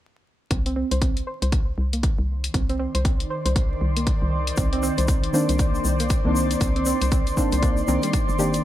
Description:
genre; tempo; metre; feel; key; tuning
deep house; 118 BPM; 4/4; swing 60% on 16ths; C minor; A4 = 440 Hz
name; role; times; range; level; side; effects
soft round pluck; arpeggios; 0.5-8.5 s; G3 to C5; -29 LUFS; right 3 dB; chorus, sidechain pumping, digital delay
hollow knocking FM bass; bass; 0.5-8.6 s; G1 to C2; -25 LUFS; equal; sidechain pumping
electronic hi-hat; drums; 0.5-8.6 s; none; -31 LUFS; left 3 dB; none
electronic kick drum; drums; 0.5-8.3 s; none; -22 LUFS; equal; none
granular cloud pad; texture; 2.3-8.6 s; Eb3 to C6; -28 LUFS; left 2 dB; built-in reverb, wide subtle chorus, sidechain pumping
tube shaker; percussion; 4.6-8.6 s; none; -33 LUFS; left 4 dB; none
deep mellow chord stab; stabs; 5.3-8.6 s; Eb3 to D4; -25 LUFS; equal; chorus, sidechain pumping, digital delay
room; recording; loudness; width
light reverb; bright 1980s-style digital production, vinyl crackle; -20 LUFS; side -13 dB against mid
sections
0.5-8.6 A section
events
filter sweep on synth arpeggio sound 0.5-8.6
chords
0.5 Cm9

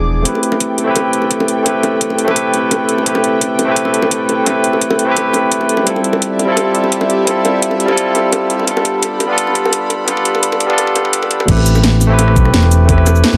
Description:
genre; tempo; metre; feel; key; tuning
liquid drum and bass; 171 BPM; 4/4; straight; A minor; A4 = 441 Hz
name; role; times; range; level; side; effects
barky tine electric piano; accompaniment; 0.0-13.4 s; F3 to B4; -17 LUFS; equal; dub echo
airy breathy pad; sustained chords; 0.0-11.5 s; G4 to D6; -24 LUFS; equal; chorus, sidechain pumping
smooth gliding synth bass; bass; 0.0-0.2, 11.5-13.4 s; E1 to B1; -13 LUFS; equal; none
drum and bass drum kit; drums; 0.3-13.4 s; cabasa, crash cymbal, hi-hat, rim click, snare drum; -20 LUFS; equal; high-pass filter on hats, low-pass filter on hats, high-pass filter on cymbals, low-pass filter on cymbals, high-pass filter on perc, low-pass filter on perc, high-pass filter on snare, low-pass filter on snare, high-pass filter on room, low-pass filter on room
electronic kick drum; drums; 0.3-13.0 s; none; -22 LUFS; equal; high-pass filter on kick, high-pass filter on room
bongos; percussion; 0.4-13.4 s; none; -24 LUFS; equal; none
room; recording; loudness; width
light reverb; high-pass filter; -14 LUFS; mono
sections
0.3-11.5 A section; 11.5-13.4 B section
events
build-up 0.3-11.5; drum fill 5.9-11.5; drop 11.5-13.4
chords
0.3 Am7; 5.9 Dm11; 8.7 G7; 11.5 Am7

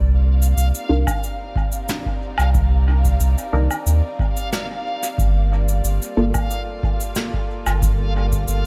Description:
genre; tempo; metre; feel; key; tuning
ambient dub; 91 BPM; 4/4; straight; C dorian; A4 = 440 Hz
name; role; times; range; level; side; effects
dark chamber string section; sustained chords; 0.0-8.7 s; G3 to D5; -35 LUFS; equal; none
warm sub bass; bass; 0.0-8.6 s; G1 to Eb2; -19 LUFS; equal; tube saturation
backwards swelling texture; texture; 0.2-8.7 s; F5; -34 LUFS; equal; built-in reverb
cabasa, woodblock and snare drum; drums; 0.4-8.6 s; none; -29 LUFS; equal; dub echo
filtered dub chord stab; stabs; 0.9-6.4 s; Bb3 to Bb4; -27 LUFS; equal; phaser, lush chorus, cassette tape, dub echo
electronic kick drum; drums; 1.1-8.4 s; none; -25 LUFS; equal; none
room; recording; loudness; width
studio reverb; none; -20 LUFS; mono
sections
0.0-8.7 A section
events
fade-in on string section 0.0-8.7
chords
0.0 Cm9; 5.2 Gm9

